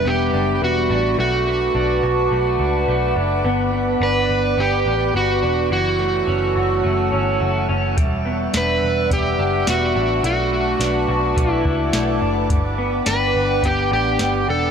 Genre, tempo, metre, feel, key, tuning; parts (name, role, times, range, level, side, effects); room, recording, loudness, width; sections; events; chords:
dream pop; 106 BPM; 4/4; straight; G lydian; A4 = 440 Hz
overdriven slide guitar; melody; 0.0-14.7 s; F#4 to B4; -21 LUFS; right 2 dB; ping-pong delay
warbly tape-like pad; sustained chords; 0.0-14.7 s; G3 to E6; -24 LUFS; right 1 dB; chorus, built-in reverb
electric guitar through a small old amp; arpeggios; 0.0-14.7 s; E3 to F#4; -23 LUFS; left 2 dB; lush chorus, ping-pong delay
vintage muted picked electric bass; bass; 0.1-14.7 s; E1 to C#2; -23 LUFS; equal
soft vintage rhythm box; drums; 8.0-14.3 s; hi-hat, kick drum, snare drum; -22 LUFS; equal
vibraphone with medium hard mallets; texture; 8.0-12.3 s; B4 to E5; -35 LUFS; right 2 dB
moderate shimmer reverb, RT60 4.3 s; -16 LUFS; side -7 dB against mid
0.0-14.7 A section
0.0 Em9; 1.2 Bm7; 3.4 Gmaj7; 5.7 F#m7; 8.0 Em9; 10.2 Bm7; 12.5 Gmaj7